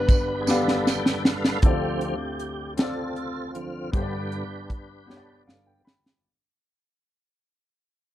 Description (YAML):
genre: slow gospel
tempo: 52 BPM (dotted quarters)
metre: 6/8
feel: straight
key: unclear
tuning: A4 = 441 Hz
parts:
  - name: breathy alto saxophone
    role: melody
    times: 0.0-0.8 s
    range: B4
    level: -29 LUFS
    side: equal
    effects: none
  - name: warm baby grand piano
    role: accompaniment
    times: 0.0-6.3 s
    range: G1 to B5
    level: -29 LUFS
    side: left 2 dB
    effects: none
  - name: tonewheel organ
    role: sustained chords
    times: 0.0-5.8 s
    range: G2 to G5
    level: -30 LUFS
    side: right 1 dB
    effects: slow rotary speaker, chorus vibrato
  - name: crisp fusion drum kit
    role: drums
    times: 0.1-6.2 s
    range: hi-hat, kick drum, snare drum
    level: -21 LUFS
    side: equal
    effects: none
  - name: tambourine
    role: percussion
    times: 0.1-1.2 s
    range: none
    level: -34 LUFS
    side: right 17 dB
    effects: none
room: little or no reverb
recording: dry, close 1970s-style studio recording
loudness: -23 LUFS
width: side -13 dB against mid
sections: 0.0-1.6 A section; 1.6-6.2 B section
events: drum fill 0.5-1.6, 5.1-6.2; tonewheel organ fill 0.5-1.6; fade-out 1.6-6.2; tonewheel organ solo 1.6-6.2; grand piano fill 5.1-6.2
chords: 0.0 G; 1.6 Dm7; 3.9 G